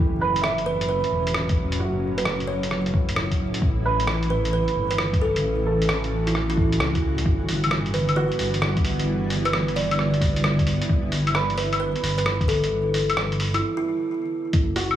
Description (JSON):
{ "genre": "future garage", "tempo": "132 BPM", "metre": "4/4", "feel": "swing 66% on 16ths", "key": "E dorian", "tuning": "A4 = 440 Hz", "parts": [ { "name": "granular cloud pad", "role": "sustained chords", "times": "0.0-15.0 s", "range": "A2 to F#4", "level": "-29 LUFS", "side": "left 1 dB", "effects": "built-in reverb, vintage 12-bit sampler grit, sidechain pumping" }, { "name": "dark detuned saw bass", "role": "bass", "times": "0.0-15.0 s", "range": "E1 to C#2", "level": "-26 LUFS", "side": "equal", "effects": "sidechain pumping" }, { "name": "warm upright piano", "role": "accompaniment", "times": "0.2-15.0 s", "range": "F#4 to E5", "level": "-30 LUFS", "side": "right 3 dB", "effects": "sidechain pumping, dub echo" }, { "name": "lo-fi sampler-style drum kit", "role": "drums", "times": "0.4-15.0 s", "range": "claves, hi-hat, rim click", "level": "-27 LUFS", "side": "left 1 dB", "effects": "none" }, { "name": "kalimba", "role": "melody", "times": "0.7-14.4 s", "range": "E4 to D5", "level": "-27 LUFS", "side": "right 2 dB", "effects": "digital delay" }, { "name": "electronic kick drum", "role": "drums", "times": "1.5-14.7 s", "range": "none", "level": "-22 LUFS", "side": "equal", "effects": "none" } ], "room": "light reverb", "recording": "vinyl crackle, studio reverb", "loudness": "-20 LUFS", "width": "side -11 dB against mid", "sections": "0.0-14.5 A section", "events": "break 13.6-14.5", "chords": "0.0 F#m; 3.6 A; 7.3 Em7/G" }